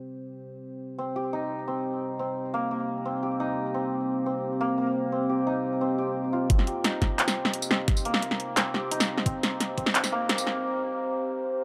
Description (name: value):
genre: half-time drum and bass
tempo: 174 BPM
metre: 4/4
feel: half-time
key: C minor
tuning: A4 = 439 Hz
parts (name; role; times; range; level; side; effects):
- dark analog pad; sustained chords; 0.0-11.6 s; C4 to C5; -34 LUFS; equal; chorus, sidechain pumping
- santur; arpeggios; 1.0-11.6 s; Bb3 to G4; -32 LUFS; equal; low-pass filter, digital delay
- drum and bass drum kit; drums; 6.5-10.5 s; handclaps, hi-hat, snare drum, tambourine; -28 LUFS; equal; overdrive, low-pass filter on snare, low-pass filter on hats, low-pass filter on perc
- electronic kick drum; drums; 6.5-9.8 s; none; -26 LUFS; equal; none
room: moderate huge ambient reverb, RT60 4.1 s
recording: dark, warm production, high-pass filter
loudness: -28 LUFS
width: mono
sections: 0.0-6.5 A section; 6.5-11.6 B section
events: filter sweep on drum 0.0-6.5; build-up 6.5-11.6; filter sweep on analog synth pad 6.5-11.6; filter sweep on santur 6.5-11.6; break 10.6-11.6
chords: 0.0 C5